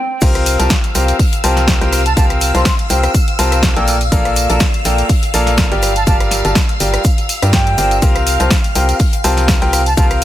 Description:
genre	piano house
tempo	123 BPM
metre	4/4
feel	swing 55% on 16ths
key	C mixolydian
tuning	A4 = 439 Hz
part	mellow concert flute	melody	0.0-10.1 s	G5 to E6	-22 LUFS	right 2 dB	ping-pong delay
part	string machine, violins	sustained chords	0.2-10.2 s	F5 to F6	-23 LUFS	left 1 dB	ensemble chorus, sidechain pumping
part	bright concert grand piano	riff	0.2-10.2 s	G3 to A5	-17 LUFS	left 1 dB	sidechain pumping, ping-pong delay
part	organ-like FM bass	bass	0.2-10.2 s	G1 to G2	-16 LUFS	equal	sidechain pumping
part	electronic kick drum	drums	0.2-10.1 s	none	-14 LUFS	equal	none
part	house drum kit	drums	0.2-10.2 s	crash cymbal, hi-hat, rim click, snare drum, tambourine	-19 LUFS	equal	none
part	modern studio drum kit	drums	0.2-10.1 s	hi-hat, shaker, snare drum	-29 LUFS	left 3 dB	none
room	studio ambience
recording	none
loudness	-11 LUFS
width	side -13 dB against mid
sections	0.2-10.2 A section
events	break 0.0; drop 0.2-10.2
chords	0.2 C7sus4; 3.9 Bbmaj7; 5.8 Gm7; 8.0 C7sus4

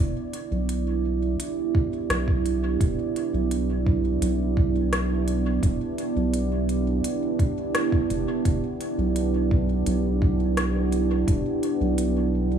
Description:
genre	ambient dub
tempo	85 BPM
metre	4/4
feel	straight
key	E minor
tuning	A4 = 441 Hz
part	deep dark ambient pad	sustained chords	0.0-12.6 s	B3 to D5	-25 LUFS	right 4 dB	chorus, built-in reverb
part	round analog bass	bass	0.0-12.6 s	E1 to B1	-25 LUFS	equal	none
part	organic electronic drum kit	drums	0.3-12.1 s	hi-hat, rim click	-31 LUFS	left 1 dB	dub echo
part	electronic kick drum	drums	1.7-11.4 s	none	-23 LUFS	equal	none
room	light reverb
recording	small room reverb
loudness	-22 LUFS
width	side -8 dB against mid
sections	0.0-12.6 A section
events	none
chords	0.0 Em7

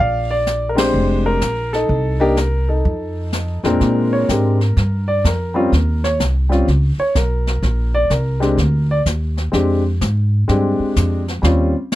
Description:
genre	jazz piano trio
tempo	126 BPM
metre	4/4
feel	swing 66% on 8ths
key	Bb mixolydian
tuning	A4 = 440 Hz
part	warm grand piano	melody	0.0-11.7 s	Bb2 to F5	-18 LUFS	left 1 dB	none
part	upright bass	bass	0.0-11.7 s	F1 to Bb2	-17 LUFS	equal	none
part	jazz brush drum kit	drums	0.5-12.0 s	brushed snare drum, hi-hat, kick drum, ride cymbal, snare drum	-24 LUFS	left 1 dB	none
room	little or no reverb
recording	dry, close 1970s-style studio recording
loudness	-15 LUFS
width	side -15 dB against mid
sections	0.0-3.8 A section; 3.8-12.0 B section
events	band accent 0.7; grand piano solo 3.8-12.0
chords	0.0 Bb13; 1.9 Cm7; 2.8 F7; 3.8 Bb13; 5.7 Eb7(no3); 7.6 Bb13; 11.4 Eb13

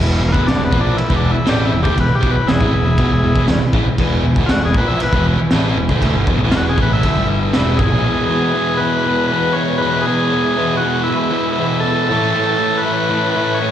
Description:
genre	garage rock duo or trio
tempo	119 BPM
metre	4/4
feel	straight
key	E mixolydian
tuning	A4 = 440 Hz
part	combo organ	sustained chords	0.0-13.7 s	E4 to G#5	-27 LUFS	equal	none
part	fuzz guitar	riff	0.0-13.7 s	E2 to A#3	-18 LUFS	equal	distortion
part	growling picked electric bass	bass	0.0-8.0 s	E1 to D2	-19 LUFS	equal	overdrive
part	combo organ	melody	0.3-13.7 s	A#3 to E5	-19 LUFS	left 2 dB	spring reverb, slapback echo
part	crunchy breakbeat drum kit	drums	0.3-7.9 s	crash cymbal, kick drum, snare drum	-18 LUFS	equal	none
room	studio ambience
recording	live gig heard through the venue's PA, recital hall reverb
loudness	-13 LUFS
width	side -10 dB against mid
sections	0.0-8.0 A section; 8.0-13.7 B section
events	transistor combo organ solo 0.0-8.0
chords	0.0 E; 12.1 A

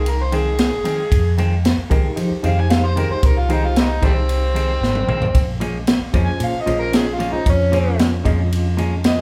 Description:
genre	straight-eighth soul blues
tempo	114 BPM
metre	4/4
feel	straight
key	F minor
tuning	A4 = 443 Hz
part	overdriven harmonica	melody	0.0-9.2 s	G3 to Ab5	-24 LUFS	equal	none
part	reed electric piano	accompaniment	0.0-9.2 s	Db4 to G5	-29 LUFS	equal	overdrive, fast tremolo
part	vintage muted fingered electric bass	bass	0.0-9.2 s	Ab1 to F3	-22 LUFS	equal	none
part	tight funk drum kit	drums	0.1-9.2 s	kick drum, ride cymbal, snare drum, toms	-22 LUFS	equal	none
part	semi-hollow electric guitar	stabs	0.3-8.9 s	F2 to Db4	-29 LUFS	equal	none
room	moderate large studio reverb, RT60 1.1 s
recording	band playing live in one room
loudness	-18 LUFS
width	mono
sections	0.0-9.2 A section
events	harmonica solo 0.0-9.2; drum fill 4.8-5.3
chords	0.0 Fm7; 5.3 Bbm7

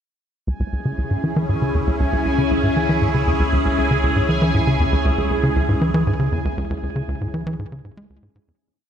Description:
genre	ambient, sequencer-driven space music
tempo	118 BPM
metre	4/4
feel	straight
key	C# minor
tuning	A4 = 441 Hz
part	lush unison pad	sustained chords	0.9-8.6 s	C#4 to G#4	-22 LUFS	equal	chorus, phaser, shimmer reverb
part	tight sequencer bass	riff	0.5-8.5 s	C#2 to G#3	-20 LUFS	equal	tape echo
part	warm sub bass	bass	0.5-8.6 s	C#2	-27 LUFS	equal	none
part	bubbling stepped-filter texture	texture	0.5-8.6 s	G#5	-29 LUFS	right 3 dB	chorus, built-in reverb, shimmer reverb
room	moderate plate reverb, RT60 2.7 s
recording	none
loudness	-17 LUFS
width	side -8 dB against mid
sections	0.5-8.6 A section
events	filter sweep on analog synth bass 0.5-8.6; fade-out 5.9-8.6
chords	0.5 C#m

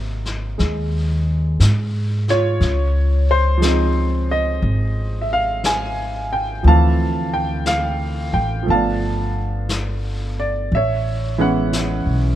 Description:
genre	jazz ballad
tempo	59 BPM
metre	4/4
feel	swing 66% on 8ths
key	unclear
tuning	A4 = 442 Hz
part	clear grand piano	accompaniment	0.0-12.4 s	C3 to A5	-21 LUFS	right 1 dB	none
part	upright bass	bass	0.0-12.4 s	G1 to Ab2	-19 LUFS	equal	none
part	vintage brush drum kit	drums	0.3-12.4 s	brushed snare drum, hi-hat, snare drum	-29 LUFS	left 3 dB	none
room	little or no reverb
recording	close, detailed microphones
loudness	-17 LUFS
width	side -12 dB against mid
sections	0.0-12.4 A section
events	none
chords	0.0 Ab7; 2.6 Dbmaj9; 6.6 Dm7; 8.7 G9; 10.7 Amaj9

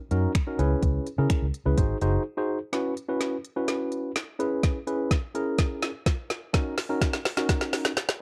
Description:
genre	dance-pop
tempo	126 BPM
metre	4/4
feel	straight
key	C# dorian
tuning	A4 = 440 Hz
part	tine electric piano	accompaniment	0.1-7.9 s	C#4 to B#4	-31 LUFS	equal	sidechain pumping
part	vintage muted fingered electric bass	bass	0.1-2.2 s	F#1 to C#3	-27 LUFS	equal	sidechain pumping
part	smooth R&B drum kit	drums	0.1-8.2 s	finger snaps, hi-hat, kick drum, snare drum	-28 LUFS	equal	none
room	little or no reverb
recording	dry, close 1970s-style studio recording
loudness	-27 LUFS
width	mono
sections	0.0-2.7 A section; 2.7-8.2 B section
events	break 2.3-2.7; build-up 2.7-8.2; drum fill 2.7-8.2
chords	0.0 D#m7; 0.6 C#m7; 1.8 G#7; 2.7 F#7sus4; 4.4 C#m7; 6.5 D#m7

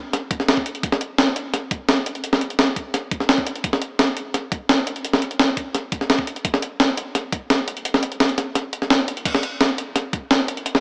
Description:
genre	drum and bass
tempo	171 BPM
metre	4/4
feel	straight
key	none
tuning	none
part	breakbeat sampler-style drum kit	drums	0.1-10.8 s	crash cymbal, hi-hat, snare drum	-22 LUFS	equal	none
part	electronic kick drum	drums	0.3-10.2 s	none	-29 LUFS	equal	none
room	moderate lush hall reverb, RT60 2.2 s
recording	small speaker sound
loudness	-22 LUFS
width	mono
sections	0.0-10.8 A section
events	kick drops out 7.9-9.3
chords	none

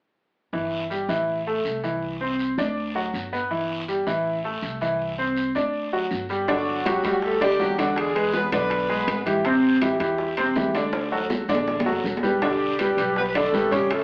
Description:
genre	latin, salsa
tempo	162 BPM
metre	4/4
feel	straight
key	unclear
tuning	A4 = 440 Hz
part	bright concert grand piano	accompaniment	0.5-14.0 s	C3 to D5	-26 LUFS	equal	none
part	upright bass	bass	0.5-14.0 s	E1 to E2	-38 LUFS	equal	none
part	guiro	percussion	0.5-14.0 s	none	-40 LUFS	equal	none
part	warm horn section	melody	6.5-9.2, 12.4-14.0 s	F#3 to B4	-27 LUFS	equal	none
part	bongos	percussion	6.5-14.0 s	none	-36 LUFS	equal	none
part	congas	percussion	6.5-14.0 s	none	-36 LUFS	equal	none
part	timbales	percussion	6.5-14.0 s	none	-34 LUFS	equal	none
room	wet studio reverb, RT60 0.5 s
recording	heard from further back in the room, AM radio sound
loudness	-24 LUFS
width	mono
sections	0.5-6.5 A section; 6.5-14.0 B section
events	drum fill 10.9-12.4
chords	0.5 Emadd11/G; 1.3 Am; 2.0 C; 2.8 D; 3.5 Emadd11/G; 4.3 Am; 5.0 C; 5.7 D; 6.5 G5; 8.0 E7; 9.4 Am7; 10.9 D; 12.4 Em7

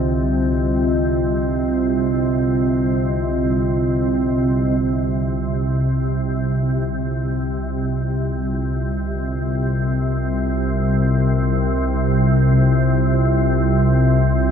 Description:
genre	dark ambient drone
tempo	free time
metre	none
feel	none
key	C minor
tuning	A4 = 440 Hz
part	dark analog pad	sustained chords	0.0-14.5 s	C4 to Eb5	-23 LUFS	right 1 dB	lush chorus
part	organ-like drone	drone	0.0-14.5 s	C2 to C3	-18 LUFS	equal	ensemble chorus, built-in reverb
part	bronze singing bowl	texture	0.0-4.8 s	D3	-33 LUFS	equal	none
room	wet huge ambient reverb, RT60 8.0 s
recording	dark, warm production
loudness	-17 LUFS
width	side -7 dB against mid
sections	0.0-4.8 A section; 4.8-14.5 B section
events	fade-in on analog synth pad 4.8-14.5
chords	0.0 Cmadd9; 4.8 Cm

